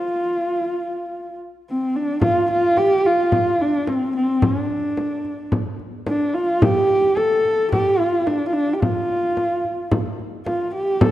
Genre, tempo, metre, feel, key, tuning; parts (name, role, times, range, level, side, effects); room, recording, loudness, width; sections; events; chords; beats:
mongolian traditional, Mongolian folk; 109 BPM; 4/4; straight; F gong mode; A4 = 440 Hz
dark horsehead fiddle; melody; 0.0-11.1 s; C4 to A4; -18 LUFS; equal
frame drum; percussion; 2.2-11.1 s; -21 LUFS; left 1 dB
moderate scoring stage reverb, RT60 1.7 s; dark, warm production; -18 LUFS; side -14 dB against mid
0.0-2.2 A section; 2.2-11.1 B section
| 0.01 0.56 1.11 1.67 | 2.22 2.77 3.32 3.87 | 4.42 4.97 5.52 6.07 | 6.62 7.16 7.71 8.26 | 8.81 9.36 9.91 10.46 | 11.01